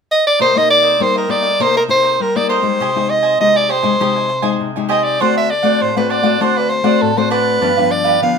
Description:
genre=samba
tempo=100 BPM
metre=4/4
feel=straight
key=C minor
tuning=A4 = 440 Hz
part: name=clear soprano saxophone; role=melody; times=0.1-8.4 s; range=A4 to F5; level=-14 LUFS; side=equal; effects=none
part: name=cavaquinho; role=accompaniment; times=0.4-8.4 s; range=D4 to Ab5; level=-20 LUFS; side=right 7 dB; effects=none
part: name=nylon-string guitar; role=accompaniment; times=0.4-8.4 s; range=G2 to G4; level=-19 LUFS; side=left 9 dB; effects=none
room=moderate studio reverb, RT60 0.6 s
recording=minimal, uncompressed stereo recording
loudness=-12 LUFS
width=side -6 dB against mid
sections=0.4-8.4 A section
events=none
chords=0.4 Cm7; 2.8 Abmaj7/C; 5.2 D7; 7.6 G7

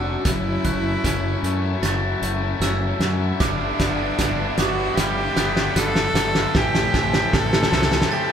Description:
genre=post-rock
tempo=76 BPM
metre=4/4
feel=straight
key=unclear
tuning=A4 = 443 Hz
part: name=rich cello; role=melody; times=0.0-8.3 s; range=D4 to A4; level=-25 LUFS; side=equal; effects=none
part: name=warm chamber string section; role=sustained chords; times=0.0-8.3 s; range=G3 to B5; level=-36 LUFS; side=right 1 dB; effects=none
part: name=glockenspiel with hard plastic mallets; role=arpeggios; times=0.0-8.3 s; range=D6 to A6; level=-31 LUFS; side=right 6 dB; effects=none
part: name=twangy electric guitar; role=arpeggios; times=0.0-8.3 s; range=F#2 to E4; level=-31 LUFS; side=left 2 dB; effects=none
part: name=crunchy overdriven guitar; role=riff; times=0.0-8.3 s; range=C#4 to A4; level=-28 LUFS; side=left 8 dB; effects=none
part: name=growling fingered electric bass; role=bass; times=0.0-8.0 s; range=F1 to F#2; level=-26 LUFS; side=equal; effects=overdrive
part: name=loose indie drum kit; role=drums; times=0.3-8.2 s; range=hi-hat, kick drum, snare drum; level=-22 LUFS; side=right 1 dB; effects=none
part: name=tight distorted guitar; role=riff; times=3.4-8.3 s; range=G2 to E3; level=-28 LUFS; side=right 7 dB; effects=distortion
room=moderate large studio reverb, RT60 1.4 s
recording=band playing live in one room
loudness=-18 LUFS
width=side -8 dB against mid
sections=0.0-8.3 A section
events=build-up 0.0-8.3; drum fill 0.0-8.1; break 8.1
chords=0.3 F#m7; 3.4 G6; 6.6 Am7

